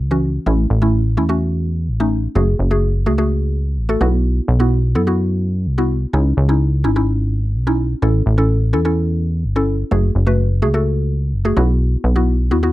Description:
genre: dance-pop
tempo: 127 BPM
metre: 4/4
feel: straight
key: unclear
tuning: A4 = 439 Hz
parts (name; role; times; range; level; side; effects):
- plucky analog bass; bass; 0.0-12.7 s; F#1 to F#2; -16 LUFS; equal; none
- mallet-like synth pluck; accompaniment; 0.1-12.7 s; E3 to B4; -20 LUFS; equal; chorus
room: little or no reverb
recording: dry, close 1970s-style studio recording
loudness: -15 LUFS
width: side -16 dB against mid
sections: 0.0-12.7 A section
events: none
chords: 0.5 A; 2.4 F#madd9; 4.0 Bsus4; 6.1 C#madd9; 8.0 A; 9.9 F#madd9; 11.6 Bsus4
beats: | 0.47 0.94 1.41 1.88 | 2.36 2.83 3.30 3.77 | 4.25 4.72 5.19 5.66 | 6.14 6.61 7.08 7.55 | 8.03 8.50 8.97 9.44 | 9.91 10.39 10.86 11.33 | 11.80 12.28

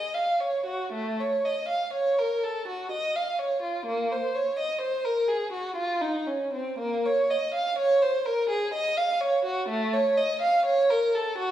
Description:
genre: classical, baroque-style suite movement for unaccompanied violin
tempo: 62 BPM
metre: 3/4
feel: rubato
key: Bb minor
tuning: A4 = 440 Hz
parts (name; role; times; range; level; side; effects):
- warm violin; solo; 0.0-11.5 s; A3 to F5; -24 LUFS; right 1 dB; none
room: wet recital hall reverb, RT60 1.3 s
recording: recorded in a church or concert hall, small room reverb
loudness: -24 LUFS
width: side -12 dB against mid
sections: 0.0-11.5 A section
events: none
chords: none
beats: | 0.93 1.94 2.91 | 3.87 4.82 5.77 | 6.79 7.78 8.73 | 9.68 10.64

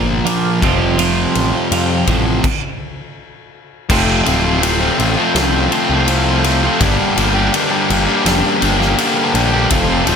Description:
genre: quiet-loud alternative rock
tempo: 82 BPM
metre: 4/4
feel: straight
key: unclear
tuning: A4 = 440 Hz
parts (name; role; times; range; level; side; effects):
- twelve-string electric guitar; arpeggios; 0.0-2.4 s; F2 to Bb4; -19 LUFS; right 10 dB; phaser
- fuzz guitar; riff; 0.0-10.2 s; F2 to G4; -14 LUFS; left 1 dB; distortion
- growling picked electric bass; bass; 0.0-10.2 s; D1 to F2; -19 LUFS; equal; overdrive
- huge arena drum kit; drums; 0.3-10.2 s; crash cymbal, kick drum, ride cymbal, snare drum; -20 LUFS; left 1 dB; none
room: light reverb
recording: none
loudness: -12 LUFS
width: side -6 dB against mid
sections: 0.0-3.9 A section; 3.9-10.2 B section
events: stop 2.4-3.9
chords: 0.0 Bb; 0.6 Fadd9; 2.4 N.C.; 3.9 F6; 6.8 Gm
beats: 0.26 | 0.99 1.72 2.45 3.17 | 3.90 4.63 5.36 6.08 | 6.81 7.54 8.27 8.99 | 9.72

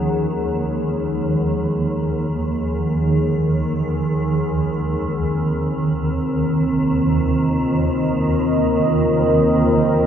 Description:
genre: dark ambient drone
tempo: free time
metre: none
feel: none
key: unclear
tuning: A4 = 440 Hz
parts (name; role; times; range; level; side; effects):
- deep dark ambient pad; sustained chords; 0.0-10.1 s; C4 to G5; -21 LUFS; left 1 dB; chorus, built-in reverb
- swarming drone; drone; 0.0-10.1 s; Eb2 to Eb3; -19 LUFS; right 1 dB; built-in reverb
- quartz singing bowl; texture; 0.0-10.1 s; F3; -32 LUFS; left 2 dB; none
room: wet huge ambient reverb, RT60 7.6 s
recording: dreamy mix soaked in reverb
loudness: -17 LUFS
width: side -9 dB against mid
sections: 0.0-10.1 A section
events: fade-in on ambient pad 0.0-10.1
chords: 0.0 Ebmadd9; 4.3 Cm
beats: free time

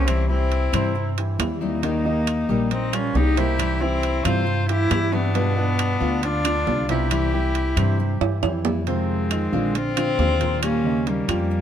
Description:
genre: latin, Cuban son and guajira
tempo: 136 BPM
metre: 4/4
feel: straight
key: unclear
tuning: A4 = 440 Hz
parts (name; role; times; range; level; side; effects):
- rich cello; melody; 0.0-11.6 s; G3 to F4; -25 LUFS; left 1 dB; none
- bright trumpet; second line; 0.0-11.6 s; Bb3 to C5; -31 LUFS; left 3 dB; none
- nylon-string guitar; accompaniment; 0.0-11.5 s; C3 to G4; -29 LUFS; left 7 dB; none
- warm concert grand piano; arpeggios; 0.0-11.6 s; Bb2 to Eb5; -28 LUFS; right 5 dB; none
- upright bass; bass; 0.0-11.6 s; Bb1 to G2; -24 LUFS; equal; none
- claves; percussion; 0.1-11.5 s; none; -34 LUFS; left 3 dB; none
- timbales; percussion; 0.1-11.5 s; none; -28 LUFS; right 8 dB; none
room: light reverb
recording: none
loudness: -19 LUFS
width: side -9 dB against mid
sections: 0.0-8.9 A section; 8.9-11.6 B section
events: drum fill 8.2-8.9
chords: 0.1 C; 1.8 Eb; 3.6 C; 5.4 G7; 7.1 C; 8.9 Fm7; 9.7 Bb7; 10.6 Eb7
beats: | 0.07 0.51 0.95 1.39 | 1.83 2.27 2.71 3.15 | 3.59 4.03 4.47 4.91 | 5.35 5.79 6.23 6.67 | 7.11 7.55 7.99 8.43 | 8.87 9.31 9.75 10.19 | 10.63 11.07 11.51

